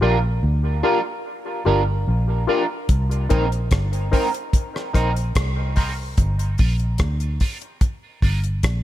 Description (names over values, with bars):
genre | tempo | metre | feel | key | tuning
dub reggae | 73 BPM | 4/4 | straight | G minor | A4 = 441 Hz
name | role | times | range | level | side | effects
electric guitar at the edge of break-up | accompaniment | 0.0-8.4 s | C4 to Bb4 | -26 LUFS | right 5 dB | analog chorus, high-pass filter, dub echo
percussive organ stab | stabs | 0.0-8.4 s | Eb4 to C5 | -26 LUFS | left 5 dB | chorus, high-pass filter, dub echo
vintage muted fingered electric bass | bass | 0.0-8.8 s | G1 to D2 | -21 LUFS | equal | none
damped 70s drum kit | drums | 2.9-8.8 s | hi-hat, kick drum, rim click | -20 LUFS | equal | none
room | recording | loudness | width
light reverb | echo-heavy mix | -19 LUFS | side -13 dB against mid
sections
0.0-8.8 A section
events
break 0.0-2.9; filter sweep 2.9-8.8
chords
0.0 Gm7; 2.9 Cm7; 6.2 Gm7